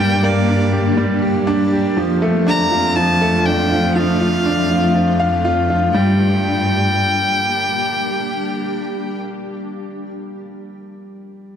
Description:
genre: piano and strings electronica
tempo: 121 BPM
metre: 4/4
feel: straight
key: G minor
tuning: A4 = 440 Hz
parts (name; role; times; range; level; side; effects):
- warm violin; melody; 0.0-9.2 s; D5 to Bb5; -20 LUFS; left 1 dB; none
- granular cloud pad; sustained chords; 0.0-9.2 s; A3 to G4; -23 LUFS; equal; built-in reverb
- clear baby grand piano; riff; 0.0-11.6 s; F3 to F5; -20 LUFS; equal; tape echo
- rich studio cello section; bass; 0.0-7.4 s; F2 to G2; -19 LUFS; equal; tube saturation
room: light reverb, small room ambience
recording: dark, warm production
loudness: -14 LUFS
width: side -8 dB against mid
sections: 0.0-5.9 A section; 5.9-9.9 B section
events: drop 0.0-5.9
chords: 0.0 Gm; 2.0 Dm/F; 5.9 Gm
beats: 0.49 0.98 1.48 | 1.97 2.47 2.97 3.46 | 3.96 4.45 4.95 5.45 | 5.94 6.44 6.93 7.43 | 7.92 8.42 8.92 9.41

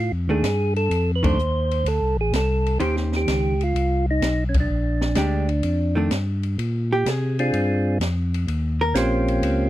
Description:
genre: soul jazz organ trio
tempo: 127 BPM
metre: 4/4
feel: swing 69% on 8ths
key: Bb mixolydian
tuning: A4 = 440 Hz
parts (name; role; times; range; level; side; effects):
- percussive tonewheel organ; melody; 0.0-9.7 s; Bb3 to C5; -23 LUFS; right 1 dB; slow rotary speaker
- tonewheel organ; bass; 0.0-9.7 s; A1 to C3; -22 LUFS; equal; slow rotary speaker
- vintage hollow-body jazz guitar; accompaniment; 0.3-9.7 s; Eb3 to C5; -25 LUFS; right 1 dB; none
- open jazz drum kit; drums; 0.4-9.6 s; hi-hat, kick drum, ride cymbal, snare drum; -28 LUFS; equal; none
room: little or no reverb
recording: dry, close 1970s-style studio recording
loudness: -19 LUFS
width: side -14 dB against mid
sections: 0.0-6.6 A section; 6.6-9.7 B section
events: band accent 1.1, 4.5; hollow-body jazz guitar solo 6.6-9.7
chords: 0.0 F13; 2.8 Eb13; 4.7 Bb6; 5.6 F13; 6.6 Bb13; 8.5 Eb13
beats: 0.44 | 0.91 1.39 1.86 2.33 | 2.80 3.28 3.75 4.22 | 4.70 5.17 5.64 6.11 | 6.59 7.06 7.53 8.01 | 8.48 8.95 9.43

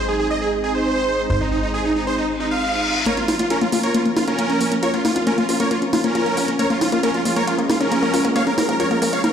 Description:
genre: uplifting trance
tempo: 136 BPM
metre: 4/4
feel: straight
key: Bb minor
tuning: A4 = 439 Hz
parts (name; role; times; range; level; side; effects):
- supersaw chords; melody; 0.0-9.3 s; Db4 to F5; -21 LUFS; right 1 dB; lush chorus, digital delay
- lush unison pad; sustained chords; 0.0-9.3 s; F3 to Eb4; -24 LUFS; equal; chorus
- plucky analog bass; bass; 0.0-9.2 s; Ab1 to Bb1; -29 LUFS; equal; high-pass filter
- reverse cymbal; sound effects; 2.4-3.1 s; none; -26 LUFS; left 4 dB; none
- wide unison pluck; arpeggios; 3.1-9.3 s; Bb3 to F4; -22 LUFS; left 2 dB; tape echo
- electronic hi-hat and congas; drums; 3.1-9.3 s; none; -24 LUFS; right 1 dB; none
room: moderate lush hall reverb, RT60 2.1 s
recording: played on a big sound system in a bare room, large studio reverb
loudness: -17 LUFS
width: side -8 dB against mid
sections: 0.0-3.1 A section; 3.1-9.3 B section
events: reverse cymbal 2.4-3.1; build-up 3.1-9.3; filter sweep on synth arpeggio sound 3.1-9.3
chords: 0.0 Ab; 3.1 Bbm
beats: 0.42 0.86 | 1.30 1.74 2.18 2.62 | 3.06 3.50 3.94 4.39 | 4.83 5.27 5.71 6.15 | 6.59 7.03 7.47 7.92 | 8.36 8.80 9.24

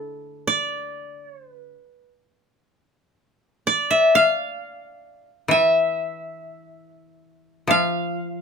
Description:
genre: japanese traditional, Japanese chamber music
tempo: free time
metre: none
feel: none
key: D minor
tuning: A4 = 436 Hz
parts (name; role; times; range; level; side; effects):
- koto; melody; 0.0-8.4 s; D5 to F5; -19 LUFS; left 1 dB; none
- koto; accompaniment; 0.0-8.4 s; D3 to A4; -24 LUFS; left 1 dB; none
room: light reverb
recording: minimal, uncompressed stereo recording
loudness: -18 LUFS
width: side -6 dB against mid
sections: 0.0-8.4 A section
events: none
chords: none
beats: free time

